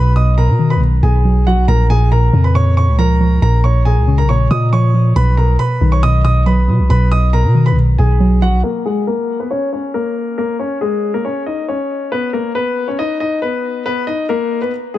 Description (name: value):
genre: hip hop, drill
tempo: 138 BPM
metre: 4/4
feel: half-time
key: Bb phrygian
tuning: A4 = 440 Hz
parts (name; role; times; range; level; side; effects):
- warm concert grand piano; melody; 0.0-15.0 s; Ab3 to D#6; -18 LUFS; left 2 dB; low-pass filter, dub echo
- warbly dusty pluck; accompaniment; 0.0-8.6 s; Bb2 to F#3; -15 LUFS; right 1 dB; chorus
- long sustained 808-style bass; bass; 0.0-8.6 s; Bb1 to B2; -13 LUFS; equal; none
room: small room ambience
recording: echo-heavy mix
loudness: -12 LUFS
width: side -14 dB against mid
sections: 0.0-8.6 A section; 8.6-15.0 B section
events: filter sweep on grand piano 8.6-15.0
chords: 0.0 B; 1.7 Bbm7; 5.2 B; 8.6 Bbm7; 12.1 B